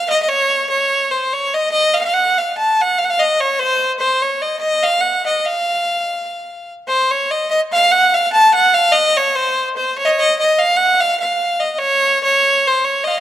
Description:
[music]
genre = balkan folk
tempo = free time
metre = none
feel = none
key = F phrygian dominant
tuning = A4 = 438 Hz
[part]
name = bright violin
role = solo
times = 0.0-13.2 s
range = C5 to A5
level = -13 LUFS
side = equal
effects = none
[sound]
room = light reverb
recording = close, detailed microphones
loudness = -13 LUFS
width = side -12 dB against mid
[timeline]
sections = 0.0-6.9 A section; 6.9-13.2 A section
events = none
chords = none

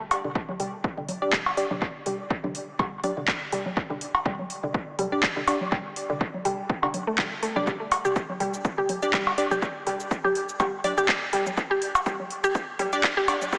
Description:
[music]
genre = minimal techno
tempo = 123 BPM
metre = 4/4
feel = swing 55% on 16ths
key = unclear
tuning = A4 = 439 Hz
[part]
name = house drum kit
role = drums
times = 0.1-13.6 s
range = handclaps, hi-hat, shaker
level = -32 LUFS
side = equal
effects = overdrive, dub echo
[part]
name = electronic cowbell, toms and congas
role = percussion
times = 0.1-13.6 s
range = none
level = -32 LUFS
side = equal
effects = overdrive, dub echo
[part]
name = mallet-like synth pluck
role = riff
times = 0.2-13.6 s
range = D3 to G4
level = -31 LUFS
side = equal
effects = chorus, phaser, sidechain pumping, dub echo
[part]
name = electronic kick drum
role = drums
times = 0.4-13.6 s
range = none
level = -31 LUFS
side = equal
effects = overdrive
[part]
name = wavetable chord stab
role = stabs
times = 1.2-13.4 s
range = D4 to D5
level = -33 LUFS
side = equal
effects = dub echo
[sound]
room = wet echo chamber reverb, RT60 2.2 s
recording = echo-heavy mix, high-pass filter, small speaker sound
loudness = -27 LUFS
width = mono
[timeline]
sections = 0.0-13.6 A section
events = build-up 0.0-13.6; filter sweep on synth arpeggio sound 0.0-13.6; filter sweep on synth stab 0.0-13.6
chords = 0.0 G5

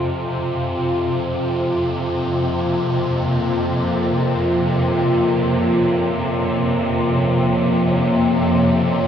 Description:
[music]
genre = dark ambient drone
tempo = free time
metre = none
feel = none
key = unclear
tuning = A4 = 440 Hz
[part]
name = deep dark ambient pad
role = sustained chords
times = 0.0-9.1 s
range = F3 to Ab5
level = -19 LUFS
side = equal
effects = chorus, built-in reverb
[part]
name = swarming drone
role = drone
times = 0.0-9.1 s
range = F2 to C3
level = -20 LUFS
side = equal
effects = built-in reverb
[part]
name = bronze singing bowl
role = texture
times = 0.0-9.1 s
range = none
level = barely audible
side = none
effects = none
[sound]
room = wet huge ambient reverb, RT60 7.3 s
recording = none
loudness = -16 LUFS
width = side -8 dB against mid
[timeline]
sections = 0.0-9.1 A section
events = none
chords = 0.1 Bbmadd9/F

